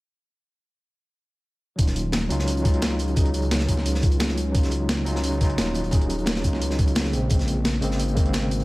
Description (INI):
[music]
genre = liquid drum and bass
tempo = 174 BPM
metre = 4/4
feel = straight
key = Eb minor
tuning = A4 = 440 Hz
[part]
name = overdriven tine electric piano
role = accompaniment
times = 1.8-8.6 s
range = Db3 to Ab4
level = -27 LUFS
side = equal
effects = fast tremolo, tape echo
[part]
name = swelling detuned saw bass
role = bass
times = 1.8-8.6 s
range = Eb1 to Db2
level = -26 LUFS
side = equal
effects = none
[part]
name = breakbeat sampler-style drum kit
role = drums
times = 1.8-8.6 s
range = hi-hat, snare drum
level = -28 LUFS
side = equal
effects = none
[part]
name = crunchy breakbeat drum kit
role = drums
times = 1.8-8.6 s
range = hi-hat, snare drum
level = -33 LUFS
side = equal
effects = high-pass filter on hats, high-pass filter on snare, high-pass filter on room
[part]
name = electronic kick drum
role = drums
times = 1.8-8.2 s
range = none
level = -21 LUFS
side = equal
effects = none
[sound]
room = light reverb, small room ambience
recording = none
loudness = -20 LUFS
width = side -20 dB against mid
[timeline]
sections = 1.8-8.6 A section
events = none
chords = 1.8 Ebm9; 7.1 Bbm9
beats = | 1.79 2.13 2.48 2.82 | 3.17 3.51 3.86 4.20 | 4.55 4.89 5.24 5.58 | 5.93 6.27 6.62 6.96 | 7.31 7.65 8.00 8.34